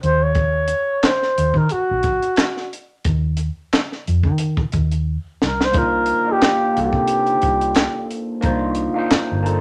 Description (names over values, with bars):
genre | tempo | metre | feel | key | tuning
R&B, neo-soul | 89 BPM | 4/4 | swing 57% on 16ths | unclear | A4 = 439 Hz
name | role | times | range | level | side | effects
breathy flugelhorn | melody | 0.0-8.1 s | F#4 to C#5 | -21 LUFS | equal | none
vintage muted fingered electric bass | bass | 0.0-9.6 s | G1 to D#3 | -23 LUFS | equal | none
compact cocktail drum kit | drums | 0.0-9.6 s | handclaps, hi-hat, kick drum, snare drum | -22 LUFS | equal | none
overdriven tine electric piano | accompaniment | 5.7-9.6 s | Bb3 to C5 | -24 LUFS | equal | phaser
room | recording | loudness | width
moderate studio reverb, RT60 0.6 s | none | -19 LUFS | mono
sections
0.0-9.6 A section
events
drum fill 5.1-5.7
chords
0.0 N.C.; 5.4 Cm11